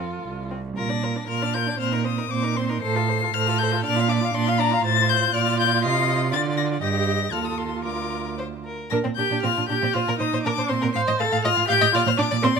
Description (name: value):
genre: quick classical-period movement for string quartet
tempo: 118 BPM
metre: 2/4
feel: rubato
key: Bb major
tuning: A4 = 442 Hz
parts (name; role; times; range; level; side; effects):
- warm violin; melody; 0.0-12.6 s; A4 to C7; -25 LUFS; left 10 dB; none
- warm violin; second line; 0.0-12.6 s; C4 to F5; -28 LUFS; left 4 dB; none
- rich viola; accompaniment; 0.0-12.5 s; C4 to C5; -27 LUFS; right 3 dB; none
- warm cello; bass; 0.0-12.6 s; C2 to D3; -25 LUFS; right 6 dB; none
room: moderate stone room reverb, RT60 1.4 s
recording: minimal, uncompressed stereo recording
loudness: -20 LUFS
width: side -5 dB against mid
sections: 0.8-8.9 A section; 8.9-12.6 B section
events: none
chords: 0.0 F; 0.8 Bb; 1.8 Cm7/Bb; 2.8 F/A; 3.8 Bb; 4.8 F/A; 5.3 Bb; 5.8 F5/C; 6.3 Bb/D (rootless); 6.8 Eb/G; 7.3 F7/Eb; 7.9 Bb/D; 8.9 Bb5; 9.9 Bbadd9; 11.0 F/A; 11.9 Bb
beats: 0.24 | 0.78 1.30 | 1.81 2.32 | 2.83 3.34 | 3.85 4.34 | 4.84 5.34 | 5.83 6.33 | 6.83 7.33 | 7.86 8.39 | 8.91 9.44 | 9.94 10.45 | 10.95 11.45 | 11.94 12.43